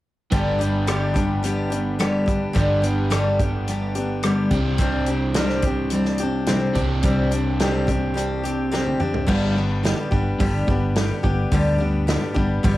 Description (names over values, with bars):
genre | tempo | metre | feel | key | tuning
folk rock and heartland rock | 107 BPM | 4/4 | straight | G major | A4 = 443 Hz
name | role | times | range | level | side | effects
picked steel-string acoustic guitar | accompaniment | 0.3-12.8 s | G2 to G4 | -22 LUFS | left 2 dB | none
crunchy overdriven guitar | riff | 0.3-12.8 s | G2 to G4 | -28 LUFS | right 3 dB | none
hollow-body short-scale fingered electric bass | bass | 0.3-12.8 s | G1 to D2 | -25 LUFS | equal | none
natural country drum kit | drums | 0.3-12.8 s | crash cymbal, hi-hat, kick drum, rim click, snare drum, toms | -25 LUFS | equal | cassette tape
room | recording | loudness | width
light reverb, small room ambience | home recording on cassette | -19 LUFS | side -16 dB against mid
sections
0.3-9.3 A section; 9.3-12.8 B section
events
drum fill 8.7-9.3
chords
0.3 G; 4.5 Csus2; 9.3 G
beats
| 0.32 0.88 1.44 2.00 | 2.56 3.12 3.68 4.24 | 4.80 5.36 5.92 6.48 | 7.04 7.60 8.16 8.72 | 9.28 9.84 10.40 10.96 | 11.52 12.08 12.64